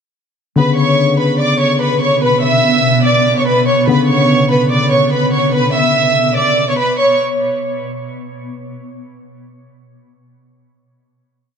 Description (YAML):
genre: hip hop, drill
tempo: 145 BPM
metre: 4/4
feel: half-time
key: B minor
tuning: A4 = 440 Hz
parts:
  - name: warm studio violin section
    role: melody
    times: 0.6-7.2 s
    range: B4 to E6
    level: -13 LUFS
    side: right 1 dB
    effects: low-pass filter, dub echo
  - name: soft electric-piano-like synth keys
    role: accompaniment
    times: 0.6-6.8 s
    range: C#3 to B3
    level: -16 LUFS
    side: left 2 dB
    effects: chorus, low-pass filter, dub echo
  - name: granular cloud pad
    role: sustained chords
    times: 1.8-7.2 s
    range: B2 to B3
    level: -19 LUFS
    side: right 1 dB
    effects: built-in reverb
room: moderate echo chamber reverb, RT60 2.4 s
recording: echo-heavy mix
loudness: -11 LUFS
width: side -7 dB against mid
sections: 0.6-7.2 breakdown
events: none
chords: 0.6 Bmadd9